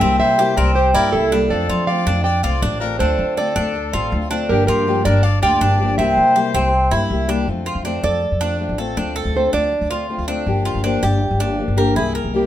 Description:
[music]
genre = latin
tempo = 161 BPM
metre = 4/4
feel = straight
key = F major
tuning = A4 = 440 Hz
[part]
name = nylon-string guitar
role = melody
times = 0.0-12.5 s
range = G4 to G5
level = -21 LUFS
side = right 3 dB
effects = none
[part]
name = bright trumpet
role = second line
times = 0.0-7.1 s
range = E4 to E5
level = -26 LUFS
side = left 7 dB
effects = none
[part]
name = fingerpicked steel-string acoustic guitar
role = accompaniment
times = 0.0-12.5 s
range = C3 to G4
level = -23 LUFS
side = left 4 dB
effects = none
[part]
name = Cuban tres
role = arpeggios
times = 0.0-12.5 s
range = C4 to Bb4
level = -21 LUFS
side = right 1 dB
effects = none
[part]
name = upright bass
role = bass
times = 0.0-12.5 s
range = G1 to F3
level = -21 LUFS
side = equal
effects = none
[sound]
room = moderate studio reverb, RT60 0.8 s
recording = minimal, uncompressed stereo recording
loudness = -15 LUFS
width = side -12 dB against mid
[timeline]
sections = 0.0-7.5 A section; 7.5-12.5 B section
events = nylon-string guitar solo 7.5-12.5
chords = 0.0 C7; 1.5 F6; 4.5 Gm7; 6.0 C7; 7.5 F6; 9.0 Dm7; 10.5 Gm7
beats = | 0.01 0.38 0.76 1.13 | 1.50 1.88 2.25 2.62 | 3.00 3.37 3.75 4.12 | 4.49 4.87 5.24 5.61 | 5.98 6.36 6.73 7.10 | 7.48 7.85 8.22 8.60 | 8.97 9.35 9.72 10.09 | 10.47 10.84 11.21 11.59 | 11.96 12.34

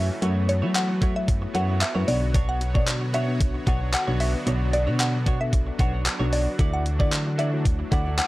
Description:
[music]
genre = dance-pop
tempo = 113 BPM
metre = 4/4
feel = straight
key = unclear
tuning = A4 = 442 Hz
[part]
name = mallet-like synth pluck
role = melody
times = 0.0-8.3 s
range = C#5 to F#5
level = -29 LUFS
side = left 1 dB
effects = chorus, sidechain pumping
[part]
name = mellow tine electric piano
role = accompaniment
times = 0.0-8.1 s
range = A3 to D5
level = -34 LUFS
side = left 1 dB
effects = medium stereo tremolo, sidechain pumping
[part]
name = soft supersaw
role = sustained chords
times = 0.0-8.3 s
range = D3 to C#5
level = -34 LUFS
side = right 1 dB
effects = sidechain pumping
[part]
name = direct-recorded clean electric guitar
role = riff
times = 0.0-8.2 s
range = A3 to D5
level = -34 LUFS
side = right 3 dB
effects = wide subtle chorus
[part]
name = solid FM bass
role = bass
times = 0.0-8.2 s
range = B1 to F#3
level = -25 LUFS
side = equal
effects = sidechain pumping
[part]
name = downlifter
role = sound effects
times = 0.0-2.3 s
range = none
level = barely audible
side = none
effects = none
[part]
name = gated 80s digital drum machine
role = drums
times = 0.2-8.3 s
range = handclaps, hi-hat, kick drum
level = -24 LUFS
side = equal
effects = gated reverb, overdrive
[sound]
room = little or no reverb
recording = dry, gritty hardware recording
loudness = -21 LUFS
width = side -18 dB against mid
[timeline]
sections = 0.0-8.3 A section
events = none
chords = 0.0 F#m7; 2.1 Bmadd9; 6.6 Dadd9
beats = | 0.22 0.75 1.28 1.81 | 2.35 2.88 3.41 3.94 | 4.47 5.00 5.53 6.06 | 6.59 7.12 7.65 8.19

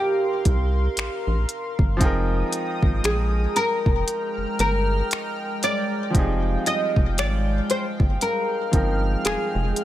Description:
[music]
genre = contemporary R&B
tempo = 58 BPM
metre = 4/4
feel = swing 58% on 16ths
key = F dorian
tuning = A4 = 438 Hz
[part]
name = oud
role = melody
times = 0.0-9.8 s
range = G4 to Eb5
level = -25 LUFS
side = equal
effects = ping-pong delay
[part]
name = bright grand piano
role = accompaniment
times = 0.0-9.8 s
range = C3 to G5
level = -30 LUFS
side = right 1 dB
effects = none
[part]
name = chorused pulse-width pad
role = sustained chords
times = 0.0-9.8 s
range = Ab3 to F6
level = -30 LUFS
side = left 1 dB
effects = none
[part]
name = rubbery square bass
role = bass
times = 0.5-9.7 s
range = F1 to C2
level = -23 LUFS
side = equal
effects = none
[part]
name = smooth R&B drum kit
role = drums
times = 0.5-9.8 s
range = finger snaps, hi-hat, kick drum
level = -22 LUFS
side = equal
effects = none
[sound]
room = digital ambience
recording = none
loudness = -20 LUFS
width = side -13 dB against mid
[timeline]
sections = 0.0-9.8 A section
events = none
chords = 0.0 Cm11; 2.0 Fm11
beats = 0.97 | 2.01 3.04 4.08 5.11 | 6.15 7.18 8.21 9.25

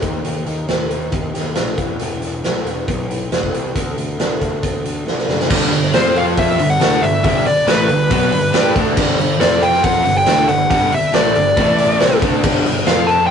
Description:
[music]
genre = quiet-loud alternative rock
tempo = 138 BPM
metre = 4/4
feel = straight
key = G major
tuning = A4 = 441 Hz
[part]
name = fingerpicked steel-string acoustic guitar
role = arpeggios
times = 0.0-5.5 s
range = E2 to G4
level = -28 LUFS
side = left 4 dB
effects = none
[part]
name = fuzz picked electric bass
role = bass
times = 0.0-13.3 s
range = E1 to G2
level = -25 LUFS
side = equal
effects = overdrive
[part]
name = raw garage drum kit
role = drums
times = 0.0-13.2 s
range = crash cymbal, hi-hat, kick drum, snare drum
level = -18 LUFS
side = equal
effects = none
[part]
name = tonewheel organ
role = sustained chords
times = 5.5-13.3 s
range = F3 to A5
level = -29 LUFS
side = equal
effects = none
[part]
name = cranked stack guitar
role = riff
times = 5.5-13.3 s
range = G2 to G4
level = -23 LUFS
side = left 5 dB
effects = overdrive
[part]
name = distorted electric guitar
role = riff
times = 5.5-13.3 s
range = G2 to G4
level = -23 LUFS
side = right 4 dB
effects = distortion
[part]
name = fuzz guitar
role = riff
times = 5.5-13.3 s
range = G2 to G4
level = -23 LUFS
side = left 1 dB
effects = distortion
[part]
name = dark smooth lead guitar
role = melody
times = 5.9-13.3 s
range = B4 to A5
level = -16 LUFS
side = left 1 dB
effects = overdrive
[sound]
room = moderate booth ambience, RT60 0.2 s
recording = rough rehearsal-room recording, nothing above 10.5 kHz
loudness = -14 LUFS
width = side -7 dB against mid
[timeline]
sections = 0.0-5.5 A section; 5.5-13.3 B section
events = drum fill 5.1-5.5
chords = 0.0 Eb; 1.8 Em; 3.8 D; 5.5 G; 5.9 F5; 6.6 G; 9.4 F5; 10.1 G; 11.6 A5; 12.0 G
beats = | 0.24 0.68 1.12 1.56 | 2.00 2.44 2.88 3.31 | 3.75 4.19 4.63 5.07 | 5.50 5.94 6.37 6.81 | 7.24 7.67 8.11 8.54 | 8.97 9.41 9.84 10.27 | 10.71 11.14 11.57 12.01 | 12.44 12.87 13.30

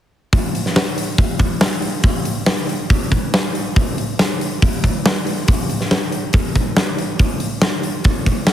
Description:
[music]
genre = rock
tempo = 140 BPM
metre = 4/4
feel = straight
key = none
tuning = none
[part]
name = huge arena drum kit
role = drums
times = 0.3-8.5 s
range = hi-hat, kick drum, snare drum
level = -15 LUFS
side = equal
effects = none
[sound]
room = light reverb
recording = heavily compressed radio sound, multiband compression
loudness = -16 LUFS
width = side -11 dB against mid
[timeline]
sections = 0.3-8.5 A section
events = none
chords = none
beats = | 0.33 0.76 1.19 1.62 | 2.05 2.48 2.90 3.33 | 3.76 4.19 4.62 5.05 | 5.48 5.91 6.34 6.76 | 7.19 7.62 8.05 8.48

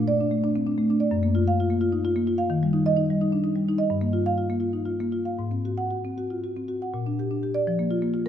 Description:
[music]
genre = classical, contemporary piece for solo marimba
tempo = 75-88 BPM (dotted quarters)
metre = 6/8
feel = rubato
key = Bb major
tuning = A4 = 441 Hz
[part]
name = marimba with medium mallets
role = solo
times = 0.0-8.3 s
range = Gb2 to Gb5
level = -22 LUFS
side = equal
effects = none
[sound]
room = moderate concert hall reverb, RT60 2.3 s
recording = none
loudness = -22 LUFS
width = side -10 dB against mid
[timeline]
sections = 0.0-6.9 A section; 6.9-8.3 B section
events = none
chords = 0.0 Bbmaj7; 1.1 Gbmaj7; 2.5 Eb; 3.9 Gm7; 5.4 Ab7; 6.9 Bb6; 7.7 Fsus4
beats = 0.44 | 1.13 1.81 | 2.50 3.20 | 3.90 4.61 | 5.38 6.16 | 6.93 7.67

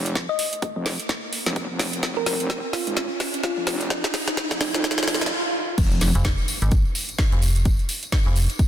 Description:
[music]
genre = bass house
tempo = 128 BPM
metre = 4/4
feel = swing 59% on 16ths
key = F minor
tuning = A4 = 438 Hz
[part]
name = metallic wobble bass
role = bass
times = 0.0-6.1 s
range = F1 to F2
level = -28 LUFS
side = equal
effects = chorus, tube saturation, sidechain pumping, high-pass filter
[part]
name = riser, swell and impact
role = sound effects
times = 0.7-7.7 s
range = none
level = -31 LUFS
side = right 1 dB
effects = none
[part]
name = garage drum kit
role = drums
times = 0.1-8.7 s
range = crash cymbal, hi-hat, snare drum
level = -26 LUFS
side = equal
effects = overdrive
[part]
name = electronic kick drum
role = drums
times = 0.2-8.7 s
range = none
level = -22 LUFS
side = equal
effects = high-pass filter on kick
[part]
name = thumb-piano-like synth pluck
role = melody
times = 0.3-5.0 s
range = Eb4 to Eb5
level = -29 LUFS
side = right 1 dB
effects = chorus, digital delay
[part]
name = tambourine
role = percussion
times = 5.8-8.7 s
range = none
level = -33 LUFS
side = left 2 dB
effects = none
[part]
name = metallic FM bass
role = bass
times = 6.2-8.5 s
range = F1 to Ab1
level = -20 LUFS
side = equal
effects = sidechain pumping
[sound]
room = light reverb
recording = dense, heavily limited modern master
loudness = -21 LUFS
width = side -11 dB against mid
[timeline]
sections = 0.0-5.8 A section; 5.8-8.7 B section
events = build-up 0.0-5.8; drum fill 0.0-5.3; riser 0.7-5.3; swell 4.8-5.8; break 5.3-5.8; drop 5.8-8.7; impact 5.8-7.7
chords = none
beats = | 0.15 0.62 1.09 1.56 | 2.03 2.50 2.97 3.44 | 3.90 4.37 4.84 5.31 | 5.78 6.25 6.72 7.19 | 7.66 8.12 8.59

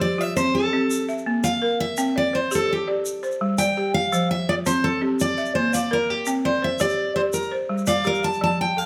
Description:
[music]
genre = west african traditional, West African string and xylophone music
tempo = 112 BPM (dotted quarters)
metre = 12/8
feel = straight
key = F major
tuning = A4 = 443 Hz
[part]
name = picked steel-string acoustic guitar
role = melody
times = 0.0-8.9 s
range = G4 to A5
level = -25 LUFS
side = equal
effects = none
[part]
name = balafon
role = arpeggios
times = 0.0-8.9 s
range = F3 to G5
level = -25 LUFS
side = equal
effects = none
[part]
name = egg shaker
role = percussion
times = 0.4-8.4 s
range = none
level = -36 LUFS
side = equal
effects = none
[sound]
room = light reverb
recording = close, detailed microphones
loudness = -22 LUFS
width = mono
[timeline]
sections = 0.0-8.4 A section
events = steel-string acoustic guitar solo 0.0-8.4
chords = 0.0 F; 0.9 Bb5; 2.0 C5; 3.1 G5; 4.1 F5; 5.2 Bb; 6.3 C5; 7.3 G5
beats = 0.37 0.91 1.45 | 1.98 2.52 3.05 3.59 | 4.13 4.66 5.20 5.73 | 6.27 6.80 7.34 7.88 | 8.41

